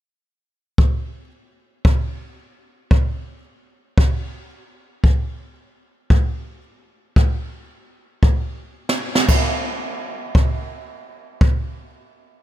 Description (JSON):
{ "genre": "pop", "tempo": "113 BPM", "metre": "4/4", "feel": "straight", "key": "none", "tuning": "none", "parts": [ { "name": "jazz brush drum kit", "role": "drums", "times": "0.8-11.5 s", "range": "crash cymbal, kick drum, snare drum", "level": "-16 LUFS", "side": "equal", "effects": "none" } ], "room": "little or no reverb", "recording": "none", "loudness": "-17 LUFS", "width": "side -13 dB against mid", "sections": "0.8-9.3 A section; 9.3-12.4 B section", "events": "drum fill 8.8-9.3", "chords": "none" }